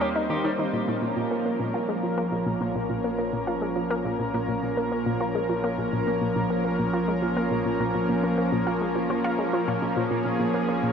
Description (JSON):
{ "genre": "ambient, sequencer-driven space music", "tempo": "104 BPM", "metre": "4/4", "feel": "straight", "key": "Bb dorian", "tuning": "A4 = 442 Hz", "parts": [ { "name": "lush unison pad", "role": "sustained chords", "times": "0.0-10.9 s", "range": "F3 to C5", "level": "-25 LUFS", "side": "equal", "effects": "chorus, shimmer reverb" }, { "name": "electric guitar at the edge of break-up", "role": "arpeggios", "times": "0.0-0.5 s", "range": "G3 to G4", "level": "-37 LUFS", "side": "equal", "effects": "auto-pan, ping-pong delay, shimmer reverb" }, { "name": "analog pluck", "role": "riff", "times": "0.0-10.9 s", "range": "Bb2 to F4", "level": "-28 LUFS", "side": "equal", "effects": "chorus, ping-pong delay" }, { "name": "analog drone", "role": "bass", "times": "0.0-10.9 s", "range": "Bb1 to Eb2", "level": "-45 LUFS", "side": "equal", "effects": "chorus" }, { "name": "bubbling stepped-filter texture", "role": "texture", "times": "0.2-0.8 s", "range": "Bb3 to C4", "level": "-41 LUFS", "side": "right 1 dB", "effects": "none" } ], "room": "wet huge ambient reverb, RT60 8.1 s", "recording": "dreamy mix soaked in reverb", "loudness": "-23 LUFS", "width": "side -7 dB against mid", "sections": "0.7-10.9 A section", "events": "fade-in on synth drone 0.7-10.9", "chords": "0.0 Eb; 0.7 Bbm", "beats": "0.16 | 0.73 1.31 1.89 2.46 | 3.04 3.62 4.20 4.77 | 5.35 5.93 6.50 7.08 | 7.66 8.23 8.81 9.39 | 9.96 10.54" }